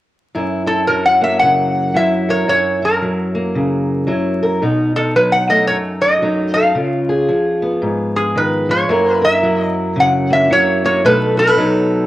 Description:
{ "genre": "acoustic country blues, solo or duo", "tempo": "112 BPM", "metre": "4/4", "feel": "swing 62% on 8ths", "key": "F# mixolydian", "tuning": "A4 = 440 Hz", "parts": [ { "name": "fingerpicked steel-string acoustic guitar", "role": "accompaniment", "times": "0.3-12.1 s", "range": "F#2 to A#4", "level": "-16 LUFS", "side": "equal", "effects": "cassette tape" }, { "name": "metal-body resonator slide guitar", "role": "melody", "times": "0.7-12.1 s", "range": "G#4 to F#5", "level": "-14 LUFS", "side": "equal", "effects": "cassette tape" } ], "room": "moderate spring reverb, RT60 1.3 s, studio reverb", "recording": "home recording on cassette, vinyl crackle", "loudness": "-13 LUFS", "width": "side -15 dB against mid", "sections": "0.3-8.9 A section; 8.9-12.1 B section", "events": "none", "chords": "0.3 F#7; 4.6 B7; 6.8 C#7; 8.9 F#7; 11.0 B7" }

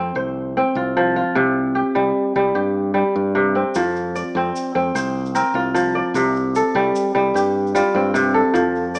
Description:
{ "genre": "west african traditional, West African string and xylophone music", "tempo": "100 BPM (dotted quarters)", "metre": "12/8", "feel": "straight", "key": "F major", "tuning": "A4 = 443 Hz", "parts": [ { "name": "kora", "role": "arpeggios", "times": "0.0-9.0 s", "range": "C3 to D5", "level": "-20 LUFS", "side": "equal", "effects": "none" }, { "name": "modern bright fingered electric bass", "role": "bass", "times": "0.0-9.0 s", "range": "C2 to G2", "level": "-28 LUFS", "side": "equal", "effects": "none" }, { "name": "tube shaker", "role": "percussion", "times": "3.7-9.0 s", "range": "none", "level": "-41 LUFS", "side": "equal", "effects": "none" } ], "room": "moderate recital hall reverb, RT60 1.5 s", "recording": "worn, warbling old tape, cassette tape, warbly pitch drift, small speaker sound", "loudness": "-19 LUFS", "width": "mono", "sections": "0.0-3.8 A section; 3.8-9.0 B section", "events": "none", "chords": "0.0 F5; 1.4 C5; 3.8 F5; 6.1 C5" }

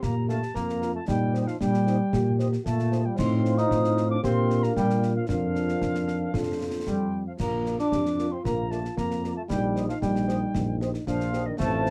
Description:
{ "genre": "military-style march for wind band", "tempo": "114 BPM", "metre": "2/4", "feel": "straight", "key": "Bb major", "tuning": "A4 = 440 Hz", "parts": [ { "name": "warm euphonium", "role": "second line", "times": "0.0-11.9 s", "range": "C4 to G4", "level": "-36 LUFS", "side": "equal", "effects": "none" }, { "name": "wooden piccolo", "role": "second line", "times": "0.0-11.9 s", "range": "Eb5 to Eb6", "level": "-37 LUFS", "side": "equal", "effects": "none" }, { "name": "dark trombone section", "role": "sustained chords", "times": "0.0-11.9 s", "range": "Eb3 to Eb4", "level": "-31 LUFS", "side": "equal", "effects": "none" }, { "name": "mellow tuba", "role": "bass", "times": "0.0-11.9 s", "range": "A1 to Bb2", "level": "-30 LUFS", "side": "equal", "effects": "none" }, { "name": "concert snare drum, concert bass drum and clash cymbals", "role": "drums", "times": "0.0-11.9 s", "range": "none", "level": "-36 LUFS", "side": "equal", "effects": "none" }, { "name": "dark trumpet section", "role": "melody", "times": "0.3-11.9 s", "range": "C5 to F5", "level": "-46 LUFS", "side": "equal", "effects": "none" }, { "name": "dark French horn section", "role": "accompaniment", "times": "0.3-11.9 s", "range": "D4 to C5", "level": "-34 LUFS", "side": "equal", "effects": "none" } ], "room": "moderate booth ambience, RT60 0.2 s", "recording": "dark, warm production", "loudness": "-26 LUFS", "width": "mono", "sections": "0.0-11.9 A section", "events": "none", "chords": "0.0 Bb; 1.1 Cm7/Bb; 3.2 F7/A; 4.2 Bb; 5.3 Bb/F; 6.3 F; 7.4 Bb; 9.5 Cm7/Bb" }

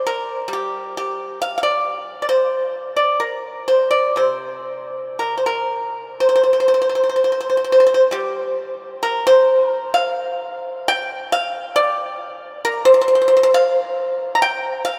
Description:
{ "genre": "chinese traditional, Chinese solo plucked strings", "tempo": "57-69 BPM", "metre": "4/4", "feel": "rubato", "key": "C shang mode", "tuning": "A4 = 440 Hz", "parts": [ { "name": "pipa", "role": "solo", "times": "0.0-15.0 s", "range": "C3 to Bb5", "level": "-18 LUFS", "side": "equal", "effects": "none" } ], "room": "wet cathedral reverb, RT60 5.7 s", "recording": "recorded in a church or concert hall", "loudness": "-18 LUFS", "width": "mono", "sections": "0.0-6.2 A section; 6.2-15.0 B section", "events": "none", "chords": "none" }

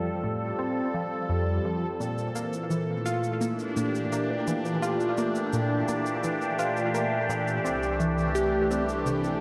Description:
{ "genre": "ambient, sequencer-driven space music", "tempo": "85 BPM", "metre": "4/4", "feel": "straight", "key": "unclear", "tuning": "A4 = 440 Hz", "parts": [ { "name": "phased analog pad", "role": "sustained chords", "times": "0.0-9.4 s", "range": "C2 to A4", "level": "-30 LUFS", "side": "equal", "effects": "phaser, chorus" }, { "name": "tight sequenced synth", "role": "riff", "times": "0.0-9.4 s", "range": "F2 to G4", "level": "-32 LUFS", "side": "equal", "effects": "chorus, phaser, tape echo" }, { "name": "cabasa and bongos", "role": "percussion", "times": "2.0-9.4 s", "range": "none", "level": "-46 LUFS", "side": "equal", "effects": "tape echo" } ], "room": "wet concert hall reverb, RT60 2.0 s", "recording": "worn, warbling old tape, cassette tape, warbly pitch drift", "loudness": "-28 LUFS", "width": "mono", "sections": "0.0-9.4 A section", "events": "none", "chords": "0.0 F; 2.0 Bb; 7.7 C" }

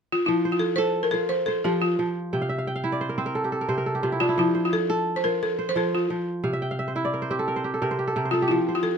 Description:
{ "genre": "west african traditional", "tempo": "117 BPM (dotted quarters)", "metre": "12/8", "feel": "straight", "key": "F major", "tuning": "A4 = 439 Hz", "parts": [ { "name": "balafon", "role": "melody", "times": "0.1-9.0 s", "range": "E4 to C5", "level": "-23 LUFS", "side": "left 1 dB", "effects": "none" }, { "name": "kora", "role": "arpeggios", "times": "0.3-9.0 s", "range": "C3 to G5", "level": "-25 LUFS", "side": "right 2 dB", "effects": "none" } ], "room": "light reverb", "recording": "close, detailed microphones", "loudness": "-22 LUFS", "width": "side -6 dB against mid", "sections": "0.3-9.0 A section", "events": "kora fill 2.3-4.4, 6.4-8.5", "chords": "0.3 F; 2.3 C; 4.4 F; 6.4 C" }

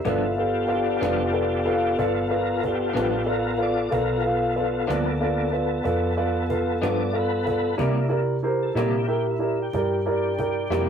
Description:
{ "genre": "slow blues", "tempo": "62 BPM (dotted quarters)", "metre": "12/8", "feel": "straight", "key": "G mixolydian", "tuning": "A4 = 440 Hz", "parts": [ { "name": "electric guitar through a small old amp", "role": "accompaniment", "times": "0.0-10.9 s", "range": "G2 to E4", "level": "-28 LUFS", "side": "left 1 dB", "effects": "tremolo" }, { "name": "tonewheel organ", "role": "sustained chords", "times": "0.0-10.9 s", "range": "Bb3 to D5", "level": "-26 LUFS", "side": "left 3 dB", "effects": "slow rotary speaker, chorus vibrato" }, { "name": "hollow-body short-scale fingered electric bass", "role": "bass", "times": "0.0-10.9 s", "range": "F1 to C3", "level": "-29 LUFS", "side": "equal", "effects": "none" }, { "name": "warm upright piano", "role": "accompaniment", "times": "0.1-10.9 s", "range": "E4 to F5", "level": "-24 LUFS", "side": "right 1 dB", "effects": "none" }, { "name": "cajon", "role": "drums", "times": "0.1-10.9 s", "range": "none", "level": "-37 LUFS", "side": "left 1 dB", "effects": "none" } ], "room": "moderate booth ambience, RT60 0.2 s", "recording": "rough rehearsal-room recording", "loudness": "-21 LUFS", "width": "side -7 dB against mid", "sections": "0.0-10.9 A section", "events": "tonewheel organ solo 0.0-10.9", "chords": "0.1 G7; 7.8 C7" }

